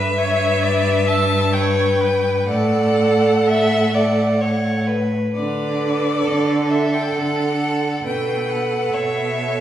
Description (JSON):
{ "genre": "classical, slow romantic movement for string quartet", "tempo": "61-69 BPM", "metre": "3/4", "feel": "rubato", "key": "D major", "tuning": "A4 = 440 Hz", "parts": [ { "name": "clear violin", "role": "melody", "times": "0.0-9.6 s", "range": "D5 to A5", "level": "-24 LUFS", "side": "left 3 dB", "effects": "none" }, { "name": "rich violin", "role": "second line", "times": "0.0-9.6 s", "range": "A4 to E5", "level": "-22 LUFS", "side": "left 2 dB", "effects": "none" }, { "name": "clear viola", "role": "accompaniment", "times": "0.0-9.6 s", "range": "A4 to E5", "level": "-23 LUFS", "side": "right 4 dB", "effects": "none" }, { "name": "clear cello", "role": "bass", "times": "0.0-9.6 s", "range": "G2 to D3", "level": "-20 LUFS", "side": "right 2 dB", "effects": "none" } ], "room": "wet recital hall reverb, RT60 1.8 s", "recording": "heard from further back in the room, small room ambience", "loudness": "-16 LUFS", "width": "side -11 dB against mid", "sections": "0.0-5.3 A section; 5.3-9.6 B section", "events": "none", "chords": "0.0 G; 2.5 D/A; 5.3 D; 8.0 B7(no3)" }